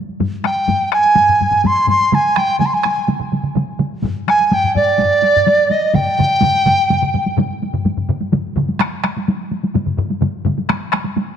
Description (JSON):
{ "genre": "japanese traditional, taiko drum ensemble", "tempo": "126 BPM", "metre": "4/4", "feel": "straight", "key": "G miyako bushi", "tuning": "A4 = 439 Hz", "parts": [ { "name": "taiko ensemble", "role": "percussion", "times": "0.1-11.3 s", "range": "none", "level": "-21 LUFS", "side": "equal", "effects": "none" }, { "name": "taiko ensemble", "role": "percussion", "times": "0.2-11.0 s", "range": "none", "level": "-22 LUFS", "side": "left 6 dB", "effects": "none" }, { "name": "large dizi", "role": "melody", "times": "0.5-7.4 s", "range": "D5 to C6", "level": "-14 LUFS", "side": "right 1 dB", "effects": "none" }, { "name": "taiko ensemble", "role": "percussion", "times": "2.1-11.0 s", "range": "none", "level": "-22 LUFS", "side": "right 5 dB", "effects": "none" } ], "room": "wet echo chamber reverb, RT60 2.0 s", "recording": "1960s-style stereo", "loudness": "-14 LUFS", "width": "side -8 dB against mid", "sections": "0.0-7.8 A section; 7.8-11.4 B section", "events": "none", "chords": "none", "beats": "| 0.20 0.68 1.17 1.65 | 2.12 2.60 3.08 3.56 | 4.04 4.52 4.99 5.47 | 5.95 6.42 6.90 7.37 | 7.85 8.32 8.80 9.27 | 9.74 10.22 10.69 11.16" }